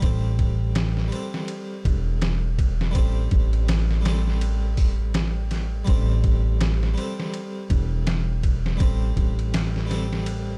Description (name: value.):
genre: trip hop.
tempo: 82 BPM.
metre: 4/4.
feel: swing 59% on 16ths.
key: A minor.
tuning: A4 = 440 Hz.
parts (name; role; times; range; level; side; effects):
harpsichord; accompaniment; 0.0-10.6 s; G3 to A4; -34 LUFS; equal; tremolo, tape echo.
upright bass; bass; 0.0-10.6 s; E1 to A1; -25 LUFS; equal; none.
trip hop sampler-style drum kit; drums; 0.0-10.5 s; hi-hat, kick drum, ride cymbal, snare drum; -27 LUFS; equal; none.
room: digital ambience.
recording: dark, warm production.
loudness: -23 LUFS.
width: mono.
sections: 0.0-10.6 A section.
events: none.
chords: 0.0 Am7.